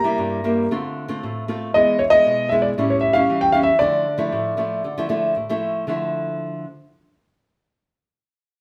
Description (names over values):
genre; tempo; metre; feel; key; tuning
samba; 116 BPM; 4/4; straight; D minor; A4 = 440 Hz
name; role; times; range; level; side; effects
warm concert grand piano; melody; 0.0-5.3 s; C#5 to Bb5; -20 LUFS; equal; none
nylon-string guitar; accompaniment; 0.0-6.6 s; G2 to F4; -24 LUFS; equal; none
room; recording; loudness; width
wet stone room reverb, RT60 1.0 s; band playing live in one room; -20 LUFS; mono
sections
0.0-5.9 A section; 5.9-8.0 B section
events
none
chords
0.0 C7; 0.7 Dm7; 1.7 E; 2.8 A7; 3.8 Dmadd9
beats
0.19 0.70 1.22 | 1.74 2.26 2.78 3.29 | 3.81 4.33 4.85 5.36 | 5.88 6.40